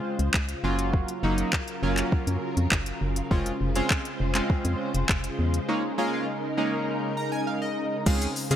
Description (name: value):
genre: dance-pop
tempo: 101 BPM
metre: 4/4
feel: straight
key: unclear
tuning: A4 = 439 Hz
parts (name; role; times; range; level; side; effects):
- chorused retro synth keys; accompaniment; 0.0-8.6 s; Gb3 to Bb5; -28 LUFS; right 1 dB; sidechain pumping
- soft string machine; sustained chords; 0.0-8.6 s; Db3 to C5; -31 LUFS; equal; ensemble chorus, sidechain pumping
- organ-like FM bass; bass; 0.2-8.6 s; F1 to Db3; -27 LUFS; equal; sidechain pumping
- smooth R&B drum kit; drums; 0.2-8.6 s; crash cymbal, handclaps, hi-hat, kick drum, shaker; -26 LUFS; equal; overdrive
room: light reverb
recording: none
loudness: -24 LUFS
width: side -10 dB against mid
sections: 0.0-8.1 A section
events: synth keys fill 6.9-8.1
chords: 0.0 Dbmaj7; 0.6 Gbmaj7; 3.3 Dbmaj7/F; 5.7 Eb7sus4